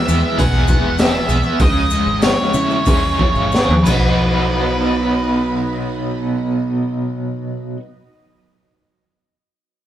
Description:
psychedelic rock; 87-101 BPM; 4/4; straight; B major; A4 = 439 Hz
octave-fuzz lead guitar; melody; 0.0-7.7 s; B4 to F#5; -22 LUFS; right 1 dB; distortion
string machine, violins; sustained chords; 0.0-7.7 s; E3 to D#5; -27 LUFS; right 3 dB; ensemble chorus
overdriven electric guitar; riff; 0.0-7.8 s; E2 to G#4; -20 LUFS; equal; tremolo
fingered electric bass; bass; 0.1-7.7 s; E1 to C#3; -21 LUFS; equal
maracas; percussion; 0.1-4.5 s; -35 LUFS; left 5 dB
raw garage drum kit; drums; 0.4-4.0 s; crash cymbal, hi-hat, kick drum, snare drum, toms; -17 LUFS; equal
moderate studio reverb, RT60 0.6 s; band playing live in one room; -14 LUFS; side -11 dB against mid
0.0-4.2 A section; 4.2-7.0 B section
slowing down 0.0-4.2; drum fill 3.5-4.2
0.0 E; 1.6 C#m; 3.9 B
0.38 0.98 | 1.59 2.22 2.86 3.52 | 4.20 4.89 5.58 6.27

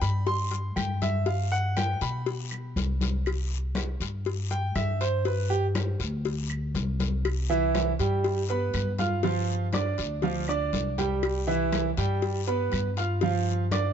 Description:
latin, Cuban son and guajira; 120 BPM; 4/4; straight; C major; A4 = 440 Hz
clear grand piano; arpeggios; 0.0-13.9 s; E3 to F6; -28 LUFS; right 4 dB
upright bass; bass; 0.0-13.9 s; C2 to B2; -28 LUFS; left 1 dB
congas; percussion; 0.0-13.9 s; -34 LUFS; left 4 dB
cowbell; percussion; 0.0-13.9 s; -35 LUFS; left 8 dB
guiro; percussion; 0.0-13.9 s; -40 LUFS; left 10 dB
claves; percussion; 0.8-13.9 s; -43 LUFS; right 5 dB
light reverb; dark, warm production, nothing above 7.9 kHz; -25 LUFS; side -8 dB against mid
0.0-7.2 A section; 7.2-13.9 B section
grand piano solo 0.0-7.2
0.0 C5; 1.3 G; 3.3 C5; 5.3 G5; 7.2 Cmaj7; 9.2 G5; 11.2 Cmaj7; 13.2 G5
0.27 0.77 | 1.26 1.76 2.26 2.76 | 3.26 3.76 4.26 4.76 | 5.25 5.75 6.25 6.75 | 7.25 7.75 8.24 8.74 | 9.24 9.74 10.24 10.73 | 11.23 11.73 12.23 12.72 | 13.22 13.72

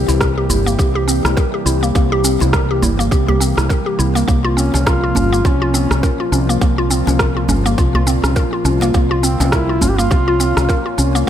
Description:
organic downtempo; 103 BPM; 4/4; swing 58% on 16ths; A4 = 441 Hz
warbly tape-like pad; sustained chords; 0.0-11.3 s; Bb2 to G4; -22 LUFS; left 2 dB; chorus, built-in reverb, phaser, sidechain pumping
mallet-like synth pluck; arpeggios; 0.0-11.3 s; Bb3 to Bb4; -19 LUFS; equal; chorus, ping-pong delay
woody fretless electric bass; bass; 0.0-11.2 s; G1 to C2; -17 LUFS; equal; sidechain pumping
electronic shaker and rim click; drums; 0.1-11.3 s; -22 LUFS; equal; studio reverb
djembe; percussion; 0.1-10.7 s; -23 LUFS; right 2 dB
electronic kick drum; drums; 0.2-10.8 s; -17 LUFS; equal; studio reverb
mellow duduk; melody; 4.6-11.0 s; C4 to G4; -21 LUFS; equal; digital delay
light reverb, digital ambience; -13 LUFS; side -10 dB against mid
0.0-11.3 A section
0.0 C7; 4.3 Bbmadd9
0.21 0.79 1.37 | 1.96 2.54 3.12 3.70 | 4.29 4.87 5.45 6.03 | 6.62 7.20 7.78 8.36 | 8.95 9.53 10.11 10.69 | 11.28

